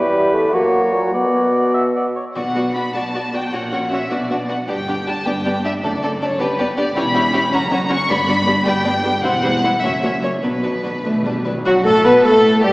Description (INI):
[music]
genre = quick classical-period movement for symphony orchestra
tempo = 97-108 BPM (dotted quarters)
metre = 6/8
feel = rubato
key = B minor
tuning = A4 = 439 Hz
[part]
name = bright clarinet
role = second line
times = 0.0-2.1, 11.7-12.7 s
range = F#4 to B4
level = -23 LUFS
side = equal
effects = none
[part]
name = dark cor anglais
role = second line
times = 0.0-2.2, 11.7-12.7 s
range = F#4 to E5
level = -22 LUFS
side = equal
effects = none
[part]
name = mellow flute section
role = second line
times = 0.0-2.1, 11.7-12.7 s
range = F#4 to F#5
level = -21 LUFS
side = equal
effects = none
[part]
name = dark bassoon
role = accompaniment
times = 0.0-2.1, 11.7-12.7 s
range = A#2 to B3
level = -18 LUFS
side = equal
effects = none
[part]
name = mellow French horn section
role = sustained chords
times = 0.0-2.2, 11.7-12.7 s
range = E3 to B3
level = -22 LUFS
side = left 1 dB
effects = none
[part]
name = warm chamber violin section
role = melody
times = 2.4-12.7 s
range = F#4 to C#6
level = -21 LUFS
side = left 1 dB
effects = none
[part]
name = warm chamber violin section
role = second line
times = 2.4-12.7 s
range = C#4 to D5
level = -22 LUFS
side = equal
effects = none
[part]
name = dark chamber viola section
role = accompaniment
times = 2.4-12.7 s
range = F#3 to F#4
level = -22 LUFS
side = equal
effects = none
[part]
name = dark chamber double bass section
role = bass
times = 2.4-12.7 s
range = E1 to B2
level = -30 LUFS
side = equal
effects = none
[part]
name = warm chamber cello section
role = bass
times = 2.4-12.7 s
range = E2 to B3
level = -25 LUFS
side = equal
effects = none
[part]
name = timpani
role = percussion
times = 2.4-2.9, 5.8-6.4, 10.4-11.6 s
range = F#2 to B2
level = -32 LUFS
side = equal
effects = none
[sound]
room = wet scoring stage reverb, RT60 1.9 s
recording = heard from further back in the room, small speaker sound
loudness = -15 LUFS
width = side -21 dB against mid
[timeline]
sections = 0.0-2.4 A section; 2.4-11.7 B section; 11.7-12.7 B section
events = timpani fill 10.4-11.7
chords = 0.0 Em; 0.5 F#; 1.1 Bm; 3.5 F#/A#; 4.1 Bm; 4.7 G; 5.8 D/F#; 6.4 G; 7.0 C#dim/E; 7.5 F#; 8.1 G; 9.2 C/E; 9.8 F#7; 10.4 Bm; 11.7 B5/F#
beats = 0.53 | 1.14 1.75 | 2.36 2.95 | 3.53 4.11 | 4.68 5.26 | 5.84 6.41 | 6.97 7.53 | 8.10 8.66 | 9.24 9.83 | 10.43 11.05 | 11.66 12.25